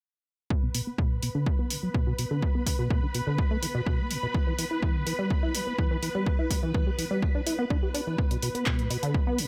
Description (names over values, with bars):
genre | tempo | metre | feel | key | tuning
acid house | 125 BPM | 4/4 | straight | unclear | A4 = 440 Hz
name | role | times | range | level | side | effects
string machine, full ensemble | sustained chords | 0.5-9.5 s | B4 | -38 LUFS | equal | ensemble chorus, sidechain pumping
deep acid bass | riff | 0.5-9.5 s | A2 to G4 | -32 LUFS | equal | analog chorus, cassette tape, sidechain pumping
electronic kick drum | drums | 0.5-9.2 s | none | -29 LUFS | equal | overdrive
punchy analog drum machine | drums | 0.7-9.5 s | handclaps, hi-hat | -35 LUFS | equal | overdrive
room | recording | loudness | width
light reverb | none | -28 LUFS | mono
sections
0.5-9.5 A section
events
filter sweep on acid bass 0.5-9.5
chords
0.5 N.C.; 4.3 Em; 8.2 N.C.